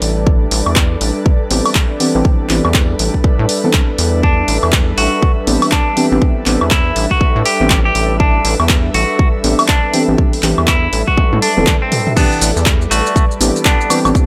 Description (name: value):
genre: deep house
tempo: 121 BPM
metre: 4/4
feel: swing 60% on 16ths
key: A minor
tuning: A4 = 440 Hz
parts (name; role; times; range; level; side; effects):
- airy breathy pad; sustained chords; 0.0-14.3 s; G3 to E5; -24 LUFS; equal; chorus, sidechain pumping
- rubbery square bass; bass; 0.0-14.1 s; E1 to A2; -20 LUFS; equal; sidechain pumping
- punchy analog drum machine; drums; 0.0-14.3 s; crash cymbal, handclaps, hi-hat, shaker, toms, woodblock; -20 LUFS; equal; none
- ethereal airy pad; texture; 0.0-14.3 s; A4 to E5; -31 LUFS; equal; none
- electronic kick drum; drums; 0.3-14.3 s; none; -16 LUFS; equal; none
- deep mellow chord stab; stabs; 1.5-14.3 s; C3 to A4; -20 LUFS; equal; subtle chorus, sidechain pumping, digital delay
- clean electric guitar; melody; 4.2-14.0 s; A3 to G4; -20 LUFS; equal; tape echo
room: light reverb, digital ambience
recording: none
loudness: -13 LUFS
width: mono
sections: 0.0-12.2 A section; 12.2-14.3 B section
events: drum fill 11.2-12.2; drop 12.2-14.3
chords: 0.0 Am11